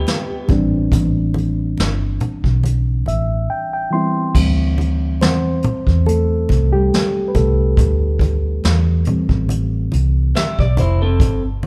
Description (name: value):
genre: R&B, neo-soul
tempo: 70 BPM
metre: 4/4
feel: swing 54% on 16ths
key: unclear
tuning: A4 = 442 Hz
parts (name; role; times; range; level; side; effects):
- electric guitar through a small old amp; second line; 0.0-0.5, 10.4-11.4 s; B3 to E5; -25 LUFS; equal; none
- mellow reed electric piano; accompaniment; 0.0-11.2 s; E3 to C6; -23 LUFS; equal; none
- vintage muted fingered electric bass; bass; 0.0-11.7 s; F1 to E2; -20 LUFS; equal; none
- vintage brush drum kit; drums; 0.1-11.4 s; crash cymbal, hi-hat, kick drum, snare drum; -21 LUFS; equal; none
- congas; percussion; 0.1-11.7 s; none; -28 LUFS; equal; none
room: moderate large studio reverb, RT60 1.5 s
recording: band playing live in one room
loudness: -17 LUFS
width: mono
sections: 0.0-4.3 A section; 4.3-11.7 B section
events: reed electric piano fill 2.6-4.3; drums muted 3.5-4.3; reed electric piano solo 4.3-11.7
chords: 0.5 Am9; 4.3 D9sus4